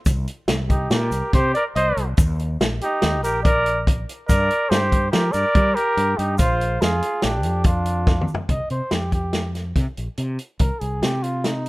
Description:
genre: progressive instrumental, band music in an uneven meter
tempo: 142 BPM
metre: 5/4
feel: straight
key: C minor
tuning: A4 = 440 Hz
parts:
  - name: fretless electric bass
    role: bass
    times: 0.1-11.7 s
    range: Bb1 to G3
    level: -24 LUFS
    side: equal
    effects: none
  - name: vintage drum kit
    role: drums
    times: 0.1-11.7 s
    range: hi-hat, kick drum, snare drum, toms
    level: -21 LUFS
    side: equal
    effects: none
  - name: egg shaker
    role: percussion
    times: 0.1-8.4 s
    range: none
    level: -39 LUFS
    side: left 3 dB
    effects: none
  - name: dark trumpet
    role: melody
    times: 0.7-11.7 s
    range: Eb4 to Eb5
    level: -24 LUFS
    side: equal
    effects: none
  - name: clear flugelhorn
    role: second line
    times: 0.7-8.3 s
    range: D4 to C5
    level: -25 LUFS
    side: right 2 dB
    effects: none
room: studio reverb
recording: rough home demo mix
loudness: -18 LUFS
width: side -20 dB against mid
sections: 0.0-8.5 A section; 8.5-11.7 B section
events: drum fill 8.1-8.5; trumpet solo 8.5-11.7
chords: 0.1 C5; 2.2 Eb; 4.3 Gm; 6.4 Bbadd9; 8.5 C5; 10.6 Cmadd11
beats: | 0.06 0.49 0.91 1.33 1.75 | 2.17 2.60 3.02 3.44 3.86 | 4.28 4.70 5.13 5.55 5.97 | 6.39 6.81 7.23 7.65 8.07 | 8.49 8.91 9.34 9.76 10.18 | 10.60 11.03 11.45

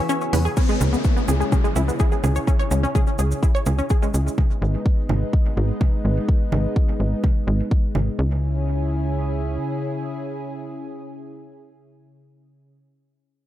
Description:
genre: melodic techno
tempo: 126 BPM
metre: 4/4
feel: straight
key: C# minor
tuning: A4 = 440 Hz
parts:
  - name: lush unison pad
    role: sustained chords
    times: 0.0-12.7 s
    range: C#3 to G#4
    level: -29 LUFS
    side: equal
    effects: chorus, sidechain pumping
  - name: wide unison pluck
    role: arpeggios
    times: 0.0-4.1 s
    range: G#3 to G#5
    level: -26 LUFS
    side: equal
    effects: auto-pan, sidechain pumping, analog delay
  - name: overtone-sweeping drone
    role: drone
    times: 0.0-0.6 s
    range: C#3 to C#4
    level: -36 LUFS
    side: left 2 dB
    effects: none
  - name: cabasa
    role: percussion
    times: 0.1-4.4 s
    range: none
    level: -37 LUFS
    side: right 3 dB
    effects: none
  - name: tight sequencer bass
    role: bass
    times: 0.3-9.6 s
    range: G#1 to E2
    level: -20 LUFS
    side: equal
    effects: tube saturation, sidechain pumping
  - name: house drum kit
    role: drums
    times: 0.3-8.0 s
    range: congas, crash cymbal, hi-hat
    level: -29 LUFS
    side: right 4 dB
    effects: dub echo
  - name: electronic kick drum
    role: drums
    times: 0.6-7.8 s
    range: none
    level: -19 LUFS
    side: equal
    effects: none
  - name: downlifter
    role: sound effects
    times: 0.6-4.4 s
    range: none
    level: -30 LUFS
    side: left 3 dB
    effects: none
room: little or no reverb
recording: echo-heavy mix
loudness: -19 LUFS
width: side -13 dB against mid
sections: 0.6-8.2 A section; 8.2-12.0 B section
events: kick drops out 0.1-0.6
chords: 0.0 Eadd9; 0.6 C#m; 4.4 G#m; 8.2 C#m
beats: 0.09 | 0.57 1.05 1.52 2.00 | 2.48 2.95 3.43 3.90 | 4.38 4.86 5.33 5.81 | 6.28 6.76 7.24 7.71 | 8.19 8.66 9.14 9.62 | 10.09 10.57 11.05 11.52

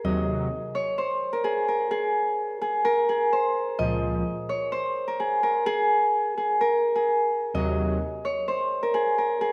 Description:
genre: hip hop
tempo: 128 BPM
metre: 4/4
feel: half-time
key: unclear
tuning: A4 = 444 Hz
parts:
  - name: Celtic harp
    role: melody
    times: 0.0-9.5 s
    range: Ab4 to Eb5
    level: -26 LUFS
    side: equal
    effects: tape echo
  - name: analog synth brass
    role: stabs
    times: 0.0-0.5, 3.8-4.2, 7.5-8.0 s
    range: Db2 to Gb3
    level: -30 LUFS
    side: equal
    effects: chorus
room: wet recital hall reverb, RT60 1.5 s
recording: none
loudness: -25 LUFS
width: mono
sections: 0.0-9.5 A section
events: none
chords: 0.0 Ab7; 3.8 Bbm7; 7.5 Ab7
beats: | 0.04 0.51 0.98 1.45 | 1.91 2.38 2.85 3.32 | 3.79 4.26 4.73 5.20 | 5.66 6.13 6.60 7.07 | 7.54 8.01 8.48 8.95 | 9.41

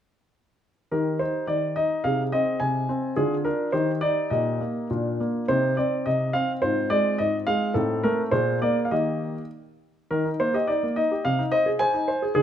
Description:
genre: classical-period piano sonatina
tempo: 105 BPM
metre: 2/4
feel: rubato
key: Eb major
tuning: A4 = 444 Hz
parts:
  - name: warm baby grand piano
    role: solo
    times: 0.9-12.4 s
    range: Ab2 to Ab5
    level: -22 LUFS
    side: equal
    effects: none
room: moderate recital hall reverb, RT60 1.4 s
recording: none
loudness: -22 LUFS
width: side -9 dB against mid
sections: 0.9-10.1 A section; 10.1-12.4 B section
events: none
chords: 0.9 Eb; 2.1 Ab/C; 3.2 Bb7/D; 3.7 Eb; 4.3 Eb/Bb; 4.9 Bb; 5.5 Cm; 6.6 Fm/Ab; 7.8 Adim; 8.3 Bb9; 8.9 Eb; 11.3 Ab/C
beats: | 0.92 1.49 | 2.05 2.61 | 3.17 3.74 | 4.32 4.91 | 5.49 6.06 | 6.62 7.19 | 7.76 8.33 | 8.92 9.52 | 10.11 10.69 | 11.25 11.81 | 12.37

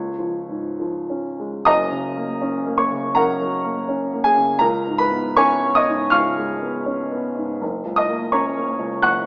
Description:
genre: classical, romantic character piece for solo piano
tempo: 65-85 BPM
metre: 4/4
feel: rubato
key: F# major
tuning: A4 = 438 Hz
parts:
  - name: warm baby grand piano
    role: solo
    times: 0.0-9.3 s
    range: F#1 to F#6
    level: -18 LUFS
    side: equal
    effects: none
room: moderate recital hall reverb, RT60 1.3 s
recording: recorded in a church or concert hall, small speaker sound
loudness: -18 LUFS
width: side -28 dB against mid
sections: 0.0-1.7 A section; 1.7-9.3 B section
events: none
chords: 0.0 C#; 1.7 F#; 4.6 C#7; 7.6 F#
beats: 0.79 | 1.66 2.42 3.14 3.87 | 4.60 5.36 6.11 6.86 | 7.61 8.33 9.04

